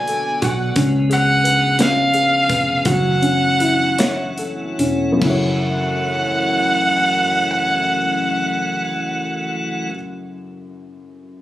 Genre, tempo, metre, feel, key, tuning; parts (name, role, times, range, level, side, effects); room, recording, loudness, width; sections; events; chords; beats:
six-eight pop ballad; 47-59 BPM (dotted quarters); 6/8; straight; F# minor; A4 = 438 Hz
dark violin; melody; 0.0-9.9 s; E#5 to G#5; -18 LUFS; right 1 dB
felt-muted upright piano; accompaniment; 0.0-11.4 s; F#2 to D5; -21 LUFS; left 1 dB
tonewheel organ; sustained chords; 0.0-9.9 s; C#3 to A4; -28 LUFS; equal; overdrive, slow rotary speaker
vintage muted fingered electric bass; bass; 0.0-9.9 s; E1 to C#2; -23 LUFS; equal
modern studio drum kit; drums; 0.1-5.4 s; crash cymbal, hi-hat, kick drum, snare drum; -24 LUFS; equal
light reverb; recorded on a phone in the room, studio ambience, compression; -15 LUFS; side -14 dB against mid
0.0-5.2 A section; 5.2-10.4 B section
slowing down 0.8-5.2
0.0 Bm7; 0.8 C#7; 2.9 F#m7
| 0.76 1.79 | 2.86 3.99 | 5.22 6.50 | 7.79 9.07